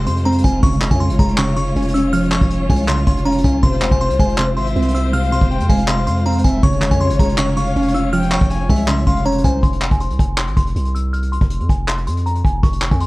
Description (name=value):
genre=hip hop, trap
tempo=160 BPM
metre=4/4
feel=half-time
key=F harmonic minor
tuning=A4 = 440 Hz
part: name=delicate synth tine bell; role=melody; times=0.0-13.1 s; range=Ab5 to F6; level=-25 LUFS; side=equal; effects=chorus, low-pass filter
part: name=soft round pluck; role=accompaniment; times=0.0-9.6 s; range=C3 to Db4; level=-20 LUFS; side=right 1 dB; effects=chorus
part: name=dark studio string section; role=sustained chords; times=0.0-9.6 s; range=Ab3 to Db5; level=-25 LUFS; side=left 1 dB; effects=none
part: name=long sustained 808-style bass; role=bass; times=0.0-13.1 s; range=F1 to F2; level=-20 LUFS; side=equal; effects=none
part: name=vintage brush drum kit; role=drums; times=0.1-13.1 s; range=handclaps, hi-hat, kick drum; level=-18 LUFS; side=equal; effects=none
part: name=breathy flute-like synth lead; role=second line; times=3.6-9.6 s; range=C5 to Ab5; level=-24 LUFS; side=left 4 dB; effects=chorus, digital delay
room=little or no reverb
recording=worn, warbling old tape, cassette tape, warbly pitch drift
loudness=-14 LUFS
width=side -20 dB against mid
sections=0.0-9.6 A section; 9.6-13.1 B section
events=filter sweep on synth bell 9.6-13.1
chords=0.0 Fm; 0.6 Db/F; 3.6 Fm; 6.6 Db/F; 9.6 F5